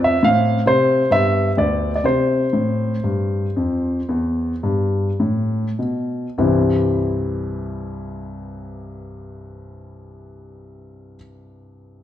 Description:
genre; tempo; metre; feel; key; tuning
classical, baroque-style suite movement for grand piano; 50-72 BPM; 4/4; rubato; C major; A4 = 440 Hz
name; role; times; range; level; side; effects
warm grand piano; solo; 0.0-12.0 s; C2 to F5; -18 LUFS; left 1 dB; none
room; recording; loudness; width
wet recital hall reverb, RT60 1.5 s; none; -17 LUFS; side -11 dB against mid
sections
0.0-6.4 A section; 6.4-11.0 B section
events
slowing down 0.0-6.4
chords
0.2 F/A; 1.1 G; 2.0 C5; 6.4 C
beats
0.23 1.11 | 2.04 3.04 4.08 5.19 | 6.37 7.53 8.68 9.82

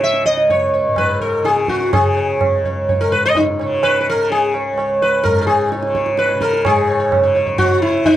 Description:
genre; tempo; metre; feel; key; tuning
indian classical, Hindustani; 127 BPM; 5/4; straight; C# raga kafi; A4 = 435 Hz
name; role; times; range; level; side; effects
sitar; melody; 0.0-8.2 s; D#4 to E5; -14 LUFS; equal; none
tanpura; drone; 0.0-8.2 s; C#2 to C#3; -25 LUFS; left 2 dB; none
tabla; percussion; 0.0-8.2 s; none; -22 LUFS; right 3 dB; none
room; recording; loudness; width
little or no reverb; dry, close 1970s-style studio recording; -14 LUFS; side -12 dB against mid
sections
0.0-6.6 A section; 6.6-8.2 B section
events
none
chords
none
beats
0.01 0.49 0.97 1.45 | 1.92 2.40 2.87 3.35 3.82 | 4.29 4.76 5.24 5.71 6.17 | 6.64 7.11 7.58 8.04

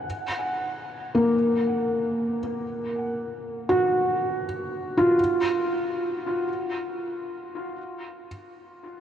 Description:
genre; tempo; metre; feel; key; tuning
ambient; free time; none; none; unclear; A4 = 440 Hz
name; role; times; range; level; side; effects
felt-muted upright piano; solo; 0.0-9.0 s; A#3 to F#5; -24 LUFS; equal; tape echo
room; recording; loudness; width
wet huge ambient reverb, RT60 8.0 s; worn, warbling old tape, cassette tape, warbly pitch drift; -23 LUFS; side -10 dB against mid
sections
0.0-9.0 A section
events
none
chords
0.1 F#; 5.2 N.C.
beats
free time

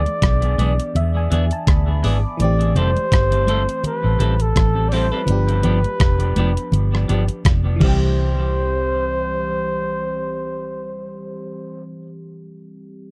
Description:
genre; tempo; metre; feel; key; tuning
lovers rock reggae; 83 BPM; 4/4; swing 56% on 16ths; C major; A4 = 440 Hz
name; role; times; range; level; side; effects
breathy flugelhorn; melody; 0.0-11.8 s; A4 to D5; -26 LUFS; equal; tape echo
FM electric piano; accompaniment; 0.0-13.1 s; E3 to D6; -30 LUFS; equal; chorus
vintage muted fingered electric bass; bass; 0.0-12.0 s; F1 to E2; -21 LUFS; equal; none
detuned 8-bit digital drum machine; drums; 0.1-8.0 s; crash cymbal, hi-hat, kick drum, rim click; -21 LUFS; equal; none
congas; percussion; 0.1-8.5 s; none; -29 LUFS; equal; none
semi-hollow electric guitar; stabs; 0.6-12.1 s; E3 to A4; -30 LUFS; equal; tape echo
room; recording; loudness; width
light reverb; dark, warm production; -19 LUFS; mono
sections
0.0-8.2 A section; 8.2-11.1 B section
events
FM electric piano fill 0.2-2.4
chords
0.0 E7; 2.4 Am7; 5.3 G7; 7.8 C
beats
0.22 0.94 1.67 | 2.39 3.11 3.84 4.56 | 5.28 6.01 6.73 7.45 | 8.18 8.90 9.62 10.35

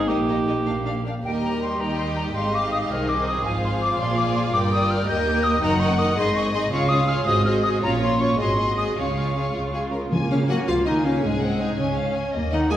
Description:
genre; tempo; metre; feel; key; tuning
quick classical-period movement for symphony orchestra; 109 BPM (dotted quarters); 6/8; rubato; Eb major, Db major from 5.6 s; A4 = 441 Hz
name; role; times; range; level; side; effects
warm cor anglais; second line; 0.0-1.1 s; G4; -26 LUFS; right 4 dB; none
mellow French horn section; sustained chords; 0.0-1.1 s; Bb3 to Eb4; -28 LUFS; left 4 dB; none
clear studio cello section; bass; 0.0-12.8 s; Eb2 to Bb3; -27 LUFS; right 1 dB; none
rich studio double bass section; bass; 0.0-12.8 s; Gb1 to Eb2; -28 LUFS; right 1 dB; none
warm studio violin section; melody; 0.1-12.8 s; Bb4 to Ab5; -31 LUFS; left 3 dB; none
rich studio violin section; second line; 0.1-12.8 s; D4 to Ab5; -29 LUFS; equal; none
rich studio viola section; accompaniment; 0.1-12.8 s; Eb3 to G4; -27 LUFS; equal; none
silver concert flute; second line; 1.2-9.9 s; G5 to G6; -25 LUFS; left 1 dB; none
timpani; percussion; 10.1-10.6 s; Db3; -28 LUFS; equal; none
warm clarinet; second line; 10.3-12.8 s; Ab3 to Ab4; -23 LUFS; left 1 dB; none
room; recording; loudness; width
wet recital hall reverb, RT60 1.5 s; heard from further back in the room; -20 LUFS; side -11 dB against mid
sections
0.0-1.2 A section; 1.2-10.1 B section; 10.1-12.8 C section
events
none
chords
0.1 Eb/Bb; 0.7 Bb; 1.2 Eb; 2.4 Ab; 3.4 Bb7/Ab; 4.5 Eb/G; 5.6 Ebm/Gb; 6.2 Ab5; 6.7 Db; 7.3 Ab7; 7.8 Bbm; 8.4 Ab7; 9.0 Db; 11.2 Ab7/C; 11.8 Db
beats
| 0.09 0.67 | 1.25 1.81 | 2.36 2.90 | 3.44 3.99 | 4.53 5.08 | 5.62 6.17 | 6.71 7.26 | 7.82 8.38 | 8.96 9.55 | 10.13 10.69 | 11.24 11.79 | 12.35

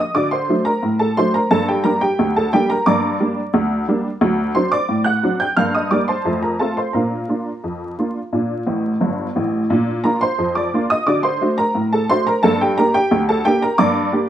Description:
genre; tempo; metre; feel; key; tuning
ragtime piano; 88 BPM; 2/4; straight; Bb major; A4 = 440 Hz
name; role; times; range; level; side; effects
honky-tonk upright piano; solo; 0.0-14.3 s; G1 to G6; -16 LUFS; right 1 dB; none
room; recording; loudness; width
moderate club reverb, RT60 0.8 s; vinyl crackle; -16 LUFS; side -11 dB against mid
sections
0.0-9.7 A section; 9.7-14.3 A section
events
honky-tonk piano fill 8.7-9.7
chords
0.1 D7; 1.5 Gm; 4.2 D7; 5.6 Gm; 6.3 F; 6.9 Bb; 11.1 D7; 12.4 Gm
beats
| 0.14 0.82 | 1.50 2.18 | 2.86 3.54 | 4.22 4.90 | 5.58 6.26 | 6.94 7.64 | 8.32 9.01 | 9.70 10.39 | 11.07 11.75 | 12.43 13.10 | 13.78

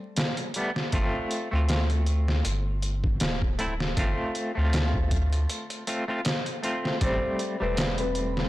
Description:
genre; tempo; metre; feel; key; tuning
trip hop; 79 BPM; 4/4; swing 55% on 16ths; unclear; A4 = 440 Hz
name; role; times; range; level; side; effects
semi-hollow electric guitar; accompaniment; 0.0-8.5 s; G3 to F4; -31 LUFS; equal; tremolo, tape echo
trip hop sampler-style drum kit; drums; 0.2-8.5 s; hi-hat, kick drum, snare drum; -28 LUFS; equal; overdrive
soft dub sub bass; bass; 0.9-8.5 s; D1 to D2; -26 LUFS; equal; tube saturation
felt-muted upright piano; melody; 7.0-8.5 s; B4 to C5; -30 LUFS; left 2 dB; none
wind-like tuned noise texture; texture; 7.4-8.5 s; C4 to B5; -37 LUFS; right 2 dB; built-in reverb
room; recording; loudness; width
light reverb, digital ambience; blown-out, overdriven recording, vinyl crackle, overdrive; -24 LUFS; side -16 dB against mid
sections
0.0-8.5 A section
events
none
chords
0.0 Am7; 0.9 G9sus4; 7.0 Am7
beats
0.17 | 0.93 1.69 2.45 3.21 | 3.97 4.73 5.49 6.25 | 7.01 7.77

